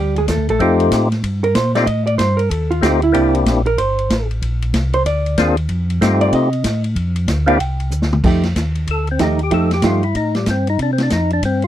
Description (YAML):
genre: soul jazz organ trio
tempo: 188 BPM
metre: 4/4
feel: swing 63% on 8ths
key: F mixolydian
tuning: A4 = 440 Hz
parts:
  - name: hollow-body jazz guitar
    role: accompaniment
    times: 0.0-10.0 s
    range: F3 to G5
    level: -18 LUFS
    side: right 3 dB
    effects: none
  - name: mellow tonewheel organ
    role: bass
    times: 0.0-11.7 s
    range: G1 to C3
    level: -18 LUFS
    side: equal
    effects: chorus vibrato, slow rotary speaker
  - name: vintage drum kit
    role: drums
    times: 0.2-11.7 s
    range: crash cymbal, hi-hat, kick drum, ride cymbal, snare drum, toms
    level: -22 LUFS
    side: equal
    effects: none
  - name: percussive tonewheel organ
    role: melody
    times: 0.6-11.7 s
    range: G3 to A4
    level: -17 LUFS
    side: left 3 dB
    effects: slow rotary speaker, overdrive
room: little or no reverb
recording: dry, close 1970s-style studio recording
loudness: -14 LUFS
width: side -12 dB against mid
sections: 0.0-8.2 A section; 8.2-11.7 A section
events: hollow-body jazz guitar solo 0.0-8.2; drum fill 7.9-8.2; tonewheel organ solo 8.2-11.7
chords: 0.0 Bb7; 0.6 F9; 3.1 C9; 4.4 Bb9; 5.7 F9; 7.6 Csus2; 8.2 F9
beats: 0.29 | 0.60 0.92 1.24 1.56 | 1.88 2.20 2.51 2.83 | 3.15 3.47 3.79 4.11 | 4.42 4.74 5.06 5.38 | 5.70 6.01 6.33 6.65 | 6.97 7.29 7.60 7.92 | 8.24 8.56 8.88 9.20 | 9.52 9.83 10.15 10.47 | 10.79 11.11 11.43